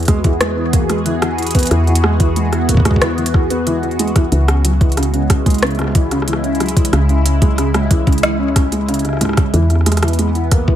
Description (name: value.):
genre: IDM.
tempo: 92 BPM.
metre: 4/4.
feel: straight.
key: E major.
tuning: A4 = 440 Hz.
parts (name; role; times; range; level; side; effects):
phased analog pad; sustained chords; 0.0-10.8 s; C#3 to G#4; -20 LUFS; equal; phaser, chorus.
woody FM bass; bass; 0.0-10.8 s; C#2 to E2; -18 LUFS; equal; none.
organic electronic drum kit; drums; 0.0-10.6 s; hi-hat, rim click; -21 LUFS; equal; none.
felt-muted upright piano; arpeggios; 0.1-10.8 s; C#2 to E4; -20 LUFS; equal; dub echo.
electronic kick drum; drums; 0.1-10.8 s; none; -13 LUFS; equal; none.
room: digital ambience.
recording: none.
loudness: -12 LUFS.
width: side -11 dB against mid.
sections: 0.0-10.8 A section.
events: none.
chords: 0.0 Eadd9; 4.3 C#m7; 9.5 Eadd9.